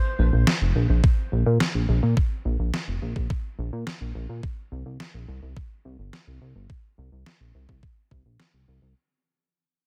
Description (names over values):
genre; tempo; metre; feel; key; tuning
synthwave; 106 BPM; 4/4; straight; unclear; A4 = 440 Hz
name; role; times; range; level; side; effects
chorused synth bass; bass; 0.2-8.9 s; F1 to Bb2; -26 LUFS; equal; none
electronic snare drum; drums; 0.5-8.5 s; none; -29 LUFS; equal; none
electronic kick drum; drums; 1.0-8.2 s; none; -25 LUFS; equal; none
room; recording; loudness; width
little or no reverb; dense, heavily limited modern master; -24 LUFS; mono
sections
0.0-9.0 A section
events
fade-out 0.0-9.0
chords
none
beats
0.47 1.04 1.60 | 2.17 2.73 3.30 3.87 | 4.43 5.00 5.57 6.13 | 6.70 7.26 7.83 8.39